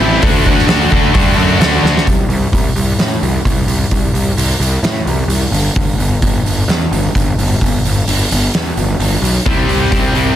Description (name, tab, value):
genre	quiet-loud alternative rock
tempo	130 BPM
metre	4/4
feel	straight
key	unclear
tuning	A4 = 440 Hz
part	distorted electric guitar	riff	0.0-2.1, 9.5-10.4 s	C3 to F#4	-13 LUFS	left 1 dB	overdrive
part	fuzz picked electric bass	bass	0.0-10.3 s	G1 to A2	-16 LUFS	equal	overdrive
part	oversized low-tuned drum kit	drums	0.2-10.3 s	hi-hat, kick drum, snare drum	-14 LUFS	equal	none
room	little or no reverb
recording	dense, heavily limited modern master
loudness	-11 LUFS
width	side -11 dB against mid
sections	0.0-2.1 A section; 2.1-10.4 B section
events	drum fill 1.8; half time 2.1-10.4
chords	0.2 D; 2.1 N.C.; 9.5 C5